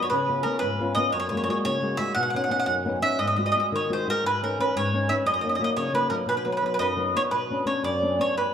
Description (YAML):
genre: italian folk, Italian serenade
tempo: 116 BPM (dotted quarters)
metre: 6/8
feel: rubato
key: B major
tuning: A4 = 436 Hz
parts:
  - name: mandolin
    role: melody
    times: 0.0-8.5 s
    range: A#4 to F#5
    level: -24 LUFS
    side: right 1 dB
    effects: tape echo
  - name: flamenco guitar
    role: accompaniment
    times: 0.0-8.5 s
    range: F#2 to F#4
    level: -27 LUFS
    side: left 2 dB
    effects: none
room: wet recital hall reverb, RT60 1.6 s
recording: dark, warm production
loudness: -22 LUFS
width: side -8 dB against mid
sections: 0.0-7.3 A section; 7.3-8.5 B section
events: none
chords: 0.1 C#7; 1.1 F#add9; 2.2 Badd9; 3.2 G#7; 4.2 C#madd9/G#; 5.2 F#6; 6.3 B; 7.3 Bmadd9